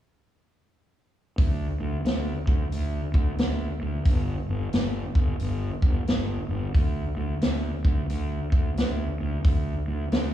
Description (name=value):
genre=blues rock power trio and southern rock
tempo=89 BPM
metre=4/4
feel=swing 63% on 8ths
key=unclear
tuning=A4 = 440 Hz
part: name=fuzz fingered electric bass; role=bass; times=1.4-10.3 s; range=G1 to D2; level=-27 LUFS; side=equal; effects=overdrive
part: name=vintage drum kit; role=drums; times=1.4-10.3 s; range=hi-hat, kick drum, snare drum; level=-24 LUFS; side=equal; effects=none
room=little or no reverb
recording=live gig heard through the venue's PA, club reverb, small room ambience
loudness=-24 LUFS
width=side -12 dB against mid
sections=1.4-10.3 A section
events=none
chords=none